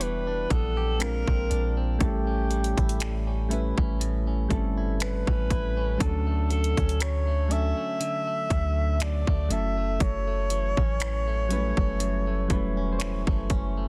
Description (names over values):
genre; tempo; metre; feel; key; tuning
contemporary R&B; 60 BPM; 4/4; swing 54% on 16ths; unclear; A4 = 440 Hz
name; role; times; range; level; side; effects
breathy alto saxophone; melody; 0.0-13.5 s; G4 to E5; -34 LUFS; equal; delay
soft electric-piano-like synth keys; accompaniment; 0.0-13.9 s; F#3 to C#5; -35 LUFS; equal; chorus
direct-recorded clean electric guitar; arpeggios; 0.0-13.9 s; F#2 to G4; -40 LUFS; equal; none
soft 808-style bass; bass; 0.0-13.9 s; E1 to D2; -30 LUFS; equal; none
trap drum kit; drums; 0.0-13.8 s; finger snaps, hi-hat, kick drum; -30 LUFS; equal; overdrive
room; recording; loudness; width
digital ambience; dense, heavily limited modern master; -26 LUFS; mono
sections
0.0-13.9 A section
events
none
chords
0.0 Em7; 1.0 A#9; 2.0 A7; 6.0 Dmaj7; 9.5 F#m7